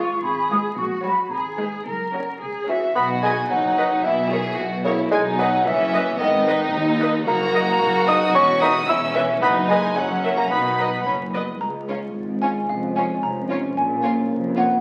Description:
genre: cinematic, playful, whimsical film cue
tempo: 111 BPM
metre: 2/4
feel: straight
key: B major, Db major from 11.6 s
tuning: A4 = 440 Hz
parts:
  - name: warm chamber violin section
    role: melody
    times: 0.0-14.6 s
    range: B4 to E6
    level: -30 LUFS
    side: equal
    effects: none
  - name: mellow large flute ensemble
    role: second line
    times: 0.0-2.4 s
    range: G#5 to D#6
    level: -26 LUFS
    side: equal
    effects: none
  - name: rich chamber violin section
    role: second line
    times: 0.0-14.6 s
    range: B3 to G#4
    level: -29 LUFS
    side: equal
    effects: none
  - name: rich symphonic viola section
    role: accompaniment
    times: 0.0-14.6 s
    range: F#3 to E5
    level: -31 LUFS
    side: equal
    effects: none
  - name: rich symphonic double bass section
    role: bass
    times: 0.0-14.7 s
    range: E1 to D#2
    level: -32 LUFS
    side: equal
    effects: none
  - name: warm chamber cello section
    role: bass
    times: 0.0-14.7 s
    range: Db2 to A#4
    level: -32 LUFS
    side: equal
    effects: none
  - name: xylophone with soft rubber mallets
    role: melody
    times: 2.7-14.8 s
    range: C#5 to E6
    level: -26 LUFS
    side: equal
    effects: none
  - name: warm bassoon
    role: accompaniment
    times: 2.7-11.0 s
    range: C#3 to E4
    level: -25 LUFS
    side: equal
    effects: none
  - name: mellow French horn section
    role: sustained chords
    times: 11.6-14.8 s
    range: Ab3 to F4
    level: -28 LUFS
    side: equal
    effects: none
room: wet stone room reverb, RT60 1.1 s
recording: very old 78 rpm record, vinyl crackle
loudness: -21 LUFS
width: mono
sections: 0.0-3.0 A section; 3.0-11.6 B section; 11.6-14.8 C section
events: none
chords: 0.0 C#7/G#; 0.8 F#/A#; 1.3 G#m; 1.9 F#; 3.0 B; 4.0 E69/B; 5.1 B; 6.2 G#m; 7.3 D#m/F#; 8.3 C#m7/E; 9.4 B/F#; 10.0 F#7; 10.5 B; 11.6 Db; 12.7 Db/F; 13.8 Bbm7

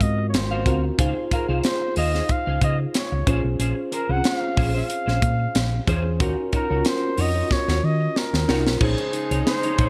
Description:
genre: polished 1980s jazz-funk pop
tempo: 92 BPM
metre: 4/4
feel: swing 54% on 16ths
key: Bb minor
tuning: A4 = 440 Hz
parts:
  - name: warm flugelhorn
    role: melody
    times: 0.0-9.9 s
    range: Bb4 to Gb5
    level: -30 LUFS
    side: equal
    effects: none
  - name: mellow tine electric piano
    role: accompaniment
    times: 0.0-9.9 s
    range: Cb4 to C5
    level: -30 LUFS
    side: equal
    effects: lush chorus
  - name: semi-hollow electric guitar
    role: riff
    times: 0.0-9.9 s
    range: Db4 to F5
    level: -34 LUFS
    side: equal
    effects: ensemble chorus
  - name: hollow-body short-scale fingered electric bass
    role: bass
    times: 0.0-9.9 s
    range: Ab1 to Eb3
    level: -26 LUFS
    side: equal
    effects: none
  - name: tight funk drum kit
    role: drums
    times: 0.0-9.9 s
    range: crash cymbal, hi-hat, kick drum, snare drum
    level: -26 LUFS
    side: equal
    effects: gated reverb
  - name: warm horn section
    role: second line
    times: 8.8-9.9 s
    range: F3 to Ab4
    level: -34 LUFS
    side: equal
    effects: none
  - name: rich studio string section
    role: sustained chords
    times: 8.8-9.9 s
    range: Db3 to C5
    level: -36 LUFS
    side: equal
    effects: none
room: light reverb, small room reverb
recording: bright 1980s-style digital production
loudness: -22 LUFS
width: mono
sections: 0.0-8.8 A section; 8.8-9.9 B section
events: drum fill 7.5-8.8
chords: 0.0 Ab13; 1.0 Dbmaj7; 3.3 Bbm9; 6.2 Ebm7; 8.8 Bbm11

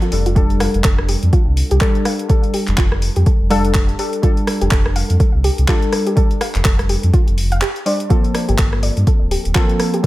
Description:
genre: deep house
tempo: 124 BPM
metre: 4/4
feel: swing 58% on 16ths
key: unclear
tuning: A4 = 445 Hz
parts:
  - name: soft round pluck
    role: arpeggios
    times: 0.0-10.1 s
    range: F4 to F5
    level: -25 LUFS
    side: right 2 dB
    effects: chorus, sidechain pumping, analog delay
  - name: warm analog keys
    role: stabs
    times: 0.0-10.1 s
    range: F3 to D5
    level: -21 LUFS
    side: left 1 dB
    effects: chorus, sidechain pumping, low-pass filter, tape echo
  - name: deep house drum kit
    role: drums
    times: 0.0-10.1 s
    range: handclaps, hi-hat, rim click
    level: -23 LUFS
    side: equal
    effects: overdrive
  - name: sub bass with octave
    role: bass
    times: 0.1-9.5 s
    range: D1 to G2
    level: -17 LUFS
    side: equal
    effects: sidechain pumping
  - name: electronic kick drum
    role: drums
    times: 0.4-10.1 s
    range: none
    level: -15 LUFS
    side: equal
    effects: overdrive
room: little or no reverb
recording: none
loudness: -13 LUFS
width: side -17 dB against mid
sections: 0.0-10.1 A section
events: break 7.6-8.1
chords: 0.1 F69; 8.1 Gm11

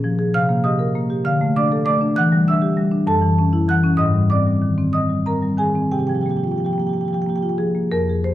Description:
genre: classical, contemporary piece for solo marimba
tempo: 59-67 BPM (dotted quarters)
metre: 6/8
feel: rubato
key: unclear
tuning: A4 = 440 Hz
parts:
  - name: marimba with medium mallets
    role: solo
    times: 0.0-8.3 s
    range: F2 to Gb6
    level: -16 LUFS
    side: equal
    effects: none
room: wet recital hall reverb, RT60 1.5 s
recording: dark, warm production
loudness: -16 LUFS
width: side -13 dB against mid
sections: 0.0-7.9 A section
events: none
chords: 0.3 Cm7; 1.3 Dm; 2.2 Em7; 3.1 Gbm7; 4.0 Abmaj9; 5.9 C7sus4

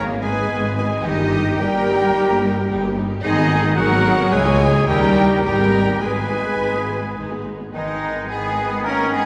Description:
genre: classical, dramatic, fast romantic movement for symphony orchestra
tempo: 108 BPM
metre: 4/4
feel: straight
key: G# minor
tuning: A4 = 440 Hz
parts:
  - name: clear oboe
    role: second line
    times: 0.0-9.3 s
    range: D#4 to A#4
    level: -30 LUFS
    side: equal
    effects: none
  - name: dark clarinet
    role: second line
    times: 0.0-9.3 s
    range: B3 to G#4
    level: -29 LUFS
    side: equal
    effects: none
  - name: flute section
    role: second line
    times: 0.0-9.3 s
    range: G4 to A#5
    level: -30 LUFS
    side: equal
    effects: none
  - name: rich studio violin section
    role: second line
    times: 0.0-9.3 s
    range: D#4 to C#5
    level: -29 LUFS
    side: equal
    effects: none
  - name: warm symphonic viola section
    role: accompaniment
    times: 0.0-9.3 s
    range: D#3 to B4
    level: -29 LUFS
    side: equal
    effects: none
  - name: mellow French horn section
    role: sustained chords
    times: 0.0-9.3 s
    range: D#3 to C#4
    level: -27 LUFS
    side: equal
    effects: none
  - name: rich symphonic double bass section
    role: bass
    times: 0.0-9.3 s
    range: G1 to D#2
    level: -26 LUFS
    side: equal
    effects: none
  - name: warm symphonic cello section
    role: bass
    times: 0.0-9.3 s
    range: D#3 to A#3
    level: -26 LUFS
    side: equal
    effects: none
  - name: rich symphonic violin section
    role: melody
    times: 0.2-9.3 s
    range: D#5 to G#5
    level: -30 LUFS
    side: equal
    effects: none
  - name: warm bassoon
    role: accompaniment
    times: 7.7-9.3 s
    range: D#3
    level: -33 LUFS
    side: equal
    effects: none
  - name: mellow trumpet section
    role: stabs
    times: 7.7-9.3 s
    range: G#3 to C#4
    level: -28 LUFS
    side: equal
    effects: none
room: wet recital hall reverb, RT60 1.7 s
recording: recorded in a church or concert hall, nothing above 10.9 kHz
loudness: -19 LUFS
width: mono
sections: 0.0-7.7 A section; 7.7-9.3 B section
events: none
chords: 0.0 G#m; 1.0 D#/G; 3.2 G#m; 4.3 C#m; 4.9 D#7b9; 5.5 G#m

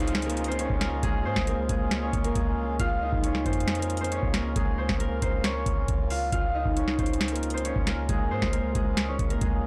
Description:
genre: hip hop, trap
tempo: 136 BPM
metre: 4/4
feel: half-time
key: Db major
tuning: A4 = 440 Hz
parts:
  - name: concert harp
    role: melody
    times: 0.0-9.7 s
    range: Ab3 to F5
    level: -32 LUFS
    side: equal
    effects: none
  - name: pedal harmonium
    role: sustained chords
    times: 0.0-9.7 s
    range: Db3 to F4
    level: -39 LUFS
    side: equal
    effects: none
  - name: clean 808-style bass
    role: bass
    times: 0.0-9.7 s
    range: C2 to Ab2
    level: -33 LUFS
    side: equal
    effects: none
  - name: booming analog drum machine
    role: drums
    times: 0.0-9.6 s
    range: hi-hat, kick drum, snare drum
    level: -31 LUFS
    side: equal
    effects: none
  - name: downlifter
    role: sound effects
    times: 0.0-2.8 s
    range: none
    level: -46 LUFS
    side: equal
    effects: none
room: little or no reverb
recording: blown-out, overdriven recording, overdrive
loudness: -27 LUFS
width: mono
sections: 0.0-9.7 A section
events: none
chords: 0.0 Db

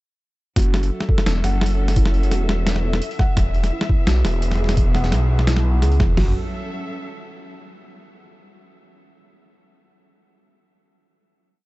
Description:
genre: half-time drum and bass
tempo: 171 BPM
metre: 4/4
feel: half-time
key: F# minor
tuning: A4 = 441 Hz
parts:
  - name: rich symphonic cello section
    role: sustained chords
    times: 0.6-7.5 s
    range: E3 to E5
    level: -30 LUFS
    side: left 1 dB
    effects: vintage 12-bit sampler grit, sidechain pumping
  - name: felt-muted upright piano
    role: arpeggios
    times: 0.6-6.3 s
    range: E4 to F#5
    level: -30 LUFS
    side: right 2 dB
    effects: digital delay
  - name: phased detuned saw bass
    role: bass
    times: 0.6-6.3 s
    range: E1 to C#2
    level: -18 LUFS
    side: equal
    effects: phaser
  - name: boom bap sampler-style drum kit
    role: drums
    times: 0.6-6.3 s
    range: hi-hat, kick drum, snare drum, toms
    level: -18 LUFS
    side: equal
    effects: overdrive
  - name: boom bap sampler-style drum kit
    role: drums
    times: 0.6-6.1 s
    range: hi-hat, snare drum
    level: -25 LUFS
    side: equal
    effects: overdrive
room: little or no reverb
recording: dark, warm production, nothing above 7.9 kHz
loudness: -17 LUFS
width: side -20 dB against mid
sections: 0.6-6.2 drop; 6.2-7.6 final chord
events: drop 0.6-6.2; band accent 6.0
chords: 0.6 F#m7; 3.4 E; 6.2 F#m7

